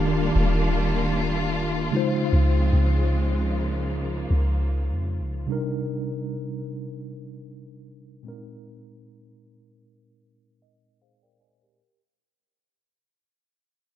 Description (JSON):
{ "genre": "R&B", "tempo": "76 BPM", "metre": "4/4", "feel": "swing 54% on 16ths", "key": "unclear", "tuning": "A4 = 441 Hz", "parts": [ { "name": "mellow tine electric piano", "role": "accompaniment", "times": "0.0-12.0 s", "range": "Bb2 to Ab5", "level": "-28 LUFS", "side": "equal", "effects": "medium stereo tremolo, low-pass filter" }, { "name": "warm studio string section", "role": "sustained chords", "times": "0.0-5.5 s", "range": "Db3 to F4", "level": "-28 LUFS", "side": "equal", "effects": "low-pass filter" }, { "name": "soft 808-style bass", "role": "bass", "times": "0.0-5.5 s", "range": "Eb1 to F2", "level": "-23 LUFS", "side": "equal", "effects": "none" } ], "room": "light reverb, studio ambience", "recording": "none", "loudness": "-22 LUFS", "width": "side -12 dB against mid", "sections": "0.0-11.8 A section", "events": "fade-out 0.0-11.8; filter sweep 0.0-11.8; tine electric piano fill 10.2-11.8", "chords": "0.0 Ebmaj9; 1.9 Dbmaj7; 5.5 Cm7; 8.2 Bb9sus4", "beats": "0.75 1.54 | 2.33 3.12 3.91 4.70 | 5.49 6.27 7.06 7.85 | 8.64 9.43 10.22 11.01" }